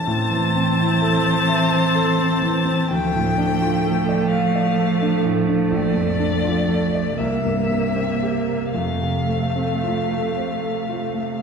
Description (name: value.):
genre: classical, slow romantic movement for piano quartet.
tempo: 37-43 BPM (dotted quarters).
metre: 6/8.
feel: rubato.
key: F major.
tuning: A4 = 442 Hz.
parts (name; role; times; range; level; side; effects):
rich violin; melody; 0.0-11.4 s; D5 to A5; -24 LUFS; left 6 dB; none.
clear grand piano; accompaniment; 0.0-11.4 s; Bb1 to F5; -24 LUFS; left 1 dB; none.
rich cello; second line; 0.1-11.4 s; C3 to F3; -23 LUFS; right 3 dB; none.
clear viola; accompaniment; 0.1-11.4 s; A3 to C4; -24 LUFS; right 3 dB; none.
room: wet recital hall reverb, RT60 1.8 s.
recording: heard from further back in the room.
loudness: -18 LUFS.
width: side -6 dB against mid.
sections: 0.0-11.4 A section.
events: none.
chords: 0.1 Am; 2.9 Dm; 5.7 Bbmaj7; 7.2 C7; 8.7 F.